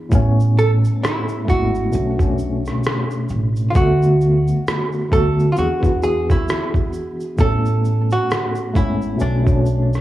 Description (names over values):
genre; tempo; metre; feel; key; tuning
lo-fi hip hop; 66 BPM; 4/4; swing 59% on 16ths; A major; A4 = 440 Hz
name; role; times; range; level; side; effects
tine electric piano; accompaniment; 0.0-10.0 s; A2 to C#5; -20 LUFS; left 1 dB; medium tremolo, cassette tape
upright bass; bass; 0.1-10.0 s; G#1 to E2; -19 LUFS; right 1 dB; none
lo-fi sampler-style drum kit; drums; 0.1-10.0 s; kick drum, rim click; -20 LUFS; equal; none
tube shaker; percussion; 0.1-10.0 s; none; -46 LUFS; right 4 dB; none
archtop guitar, miked and amplified; melody; 0.6-10.0 s; D4 to A4; -23 LUFS; right 2 dB; none
room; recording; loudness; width
light reverb; worn, warbling old tape, cassette tape, warbly pitch drift, studio ambience; -16 LUFS; side -14 dB against mid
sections
0.1-10.0 A section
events
hi-hats muted 0.1-10.0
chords
0.1 Amaj9; 1.9 Bm9; 3.8 D6; 5.6 E7; 7.4 Amaj9; 9.2 Bm9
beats
| 0.12 1.02 1.93 2.84 | 3.75 4.66 5.57 6.48 | 7.39 8.30 9.21